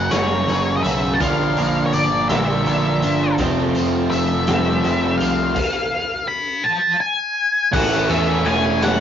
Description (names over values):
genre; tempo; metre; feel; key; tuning
quiet-loud alternative rock; 55 BPM (dotted quarters); 6/8; straight; unclear; A4 = 440 Hz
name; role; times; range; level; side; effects
octave-fuzz lead guitar; melody; 0.0-9.0 s; C#5 to B5; -21 LUFS; left 2 dB; distortion
distorted electric guitar; riff; 0.0-9.0 s; F2 to E4; -22 LUFS; right 3 dB; distortion
sludgy distorted guitar; riff; 0.0-9.0 s; F2 to E4; -26 LUFS; left 3 dB; overdrive
growling picked electric bass; bass; 0.0-9.0 s; E1 to E2; -26 LUFS; equal; overdrive
twelve-string electric guitar; arpeggios; 0.1-5.6 s; D3 to F#4; -23 LUFS; right 1 dB; none
raw garage drum kit; drums; 0.1-9.0 s; crash cymbal, hi-hat, kick drum, ride cymbal, snare drum; -25 LUFS; equal; none
cranked stack guitar; riff; 7.7-9.0 s; A2 to A3; -26 LUFS; equal; overdrive
room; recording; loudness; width
moderate studio reverb, RT60 0.6 s; rough rehearsal-room recording, nothing above 7.5 kHz; -16 LUFS; side -9 dB against mid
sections
0.0-7.7 A section; 7.7-9.0 B section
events
lead electric guitar solo 0.0-7.7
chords
0.0 F#; 1.2 Bb; 3.4 F; 5.6 N.C.; 7.7 A